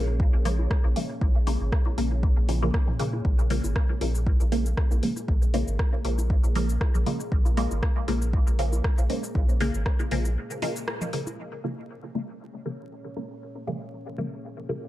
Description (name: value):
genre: dub techno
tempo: 118 BPM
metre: 4/4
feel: swing 55% on 16ths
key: Bb minor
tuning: A4 = 439 Hz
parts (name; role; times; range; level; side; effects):
- deep dark ambient pad; sustained chords; 0.0-14.9 s; Bb3 to Db5; -38 LUFS; equal; chorus, built-in reverb, sidechain pumping
- filtered dub chord stab; stabs; 0.0-14.9 s; Db3 to Bb3; -31 LUFS; equal; phaser, sidechain pumping, dub echo
- warm sub bass; bass; 0.0-10.4 s; Ab1 to Bb2; -26 LUFS; equal; sidechain pumping
- electronic kick drum; drums; 0.2-10.0 s; none; -23 LUFS; equal; overdrive
- bongos and congas; percussion; 0.2-11.4 s; none; -41 LUFS; right 1 dB; sidechain pumping on perc, dub echo
- deep house drum kit; drums; 0.5-11.4 s; cabasa, hi-hat, rim click; -36 LUFS; equal; overdrive, low-pass filter on hats, low-pass filter on snare, low-pass filter on perc, low-pass filter on room, dub echo
room: little or no reverb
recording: dark, warm production, vinyl crackle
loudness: -23 LUFS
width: side -15 dB against mid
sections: 0.0-11.4 A section; 11.4-14.9 B section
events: filter sweep on synth stab 0.0-11.4, 11.4-14.9; break 10.4-11.4; band accent 10.9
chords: 0.0 Bbm7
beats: 0.20 0.71 | 1.22 1.72 2.23 2.74 | 3.25 3.76 4.27 4.78 | 5.28 5.79 6.30 6.81 | 7.32 7.83 8.33 8.84 | 9.35 9.86 10.37 10.88 | 11.38 11.89 12.40 12.91 | 13.42 13.93 14.44